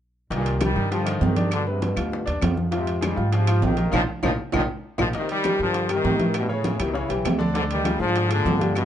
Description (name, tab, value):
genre	latin, salsa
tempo	199 BPM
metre	4/4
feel	straight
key	C minor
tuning	A4 = 441 Hz
part	brilliant trombone section	melody	0.3-8.8 s	G2 to G3	-26 LUFS	equal	none
part	bright upright piano	accompaniment	0.3-8.8 s	C#3 to Eb5	-28 LUFS	left 3 dB	none
part	upright bass	bass	0.3-8.8 s	Bb1 to A2	-25 LUFS	equal	none
part	bongos	percussion	0.3-8.8 s	none	-34 LUFS	left 4 dB	none
part	congas	percussion	0.3-8.8 s	none	-29 LUFS	right 1 dB	none
part	timbales	percussion	0.3-8.8 s	none	-31 LUFS	right 7 dB	none
part	claves	percussion	0.6-8.8 s	none	-37 LUFS	left 5 dB	none
room	moderate small room reverb, RT60 0.5 s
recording	nothing above 10.3 kHz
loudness	-20 LUFS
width	side -10 dB against mid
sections	0.3-5.1 A section; 5.1-8.8 B section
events	band accent 3.9-5.1; drum fill 4.2-5.1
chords	0.3 Cm9; 1.5 G7; 2.7 Fm9; 3.9 Bbsus4; 5.1 Cm7; 6.3 A7; 7.6 Ddim